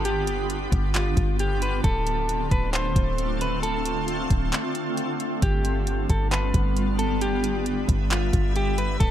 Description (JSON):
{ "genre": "hip hop, atmospheric cloud-rap", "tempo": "134 BPM", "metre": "4/4", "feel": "half-time", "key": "unclear", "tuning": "A4 = 444 Hz", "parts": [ { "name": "clean electric guitar", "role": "melody", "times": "0.0-9.1 s", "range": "F4 to C5", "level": "-29 LUFS", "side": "equal", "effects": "tape echo" }, { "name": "shimmering ambient pad", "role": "sustained chords", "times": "0.0-9.1 s", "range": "D3 to E5", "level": "-28 LUFS", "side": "equal", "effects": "chorus, built-in reverb, sidechain pumping" }, { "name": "soft 808-style bass", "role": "bass", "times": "0.0-9.1 s", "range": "D1 to G1", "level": "-26 LUFS", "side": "equal", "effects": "none" }, { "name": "smooth R&B drum kit", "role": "drums", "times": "0.1-9.1 s", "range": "handclaps, hi-hat, kick drum", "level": "-25 LUFS", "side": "equal", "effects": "none" } ], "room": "light reverb, digital ambience", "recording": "echo-heavy mix", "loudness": "-22 LUFS", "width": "side -11 dB against mid", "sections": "0.0-9.1 A section", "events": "kick muted 4.5-5.4", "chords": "0.0 G7; 1.8 Dm7; 5.4 G7" }